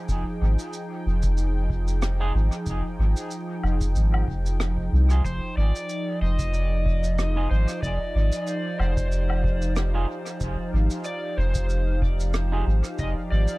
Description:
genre	ambient dub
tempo	93 BPM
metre	4/4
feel	swing 55% on 16ths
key	F dorian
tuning	A4 = 440 Hz
part	warm analog pad	sustained chords	0.0-13.6 s	F3 to G5	-32 LUFS	equal	chorus
part	soft dub sub bass	bass	0.1-13.5 s	F1 to C2	-22 LUFS	equal	none
part	electronic kick drum	drums	0.1-13.1 s	none	-30 LUFS	equal	none
part	shaker, rim click and woodblock	drums	0.1-13.6 s	none	-36 LUFS	right 1 dB	dub echo
part	clean electric guitar	stabs	2.2-12.6 s	Eb4 to Ab4	-38 LUFS	right 4 dB	dub echo
part	overdriven slide guitar	melody	5.3-13.6 s	C5 to Eb5	-32 LUFS	equal	vintage 12-bit sampler grit, dub echo
room	small room ambience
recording	echo-heavy mix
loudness	-22 LUFS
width	side -21 dB against mid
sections	0.0-13.6 A section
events	none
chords	0.0 Fm7

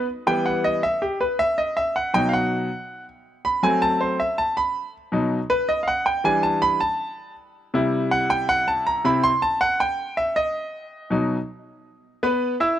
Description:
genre	latin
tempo	160 BPM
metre	4/4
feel	straight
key	E minor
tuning	A4 = 440 Hz
part	bright grand piano	solo	0.0-12.8 s	B2 to E6	-20 LUFS	equal	none
room	studio ambience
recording	dry, close 1970s-style studio recording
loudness	-20 LUFS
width	side -11 dB against mid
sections	0.1-12.0 A section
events	grand piano solo 0.1-12.0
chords	0.1 Em; 1.6 B; 3.1 F#dim; 4.6 B; 6.1 Em7; 7.6 C; 9.1 C(#11); 10.6 B; 12.0 Bsus4

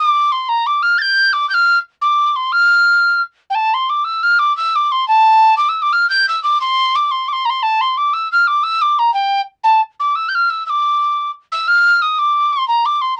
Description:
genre	celtic folk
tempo	118 BPM (dotted quarters)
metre	6/8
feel	straight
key	D minor from 3.5 s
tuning	A4 = 440 Hz
part	mellow hollow tin whistle	solo	0.0-13.2 s	G5 to A6	-14 LUFS	equal	none
room	wet booth ambience, RT60 0.2 s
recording	home recording on cassette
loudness	-15 LUFS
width	mono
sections	0.0-3.5 A section; 3.5-11.7 B section; 11.7-13.2 A section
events	none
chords	none

